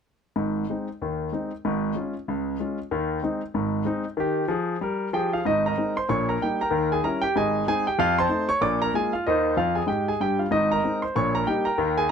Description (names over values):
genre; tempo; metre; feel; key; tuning
jazz, stride piano; 189 BPM; 4/4; swing 61% on 8ths; Ab major; A4 = 440 Hz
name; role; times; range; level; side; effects
clear concert grand piano; solo; 0.4-12.1 s; Ab1 to D6; -22 LUFS; equal; none
room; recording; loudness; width
light reverb; close, detailed microphones; -22 LUFS; side -7 dB against mid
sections
0.4-5.5 A section; 5.5-12.1 B section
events
grand piano fill 9.6-10.5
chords
0.4 Ab; 1.6 Db/Ab; 2.9 Ab/Eb; 4.2 Eb; 5.5 Ab; 6.1 Eb7/Bb; 6.7 Eb7b9; 7.4 Ab; 8.0 F7; 8.6 Bb7; 9.3 Ab/Eb; 9.9 Fmadd9; 10.5 Ab; 11.2 Eb7/Bb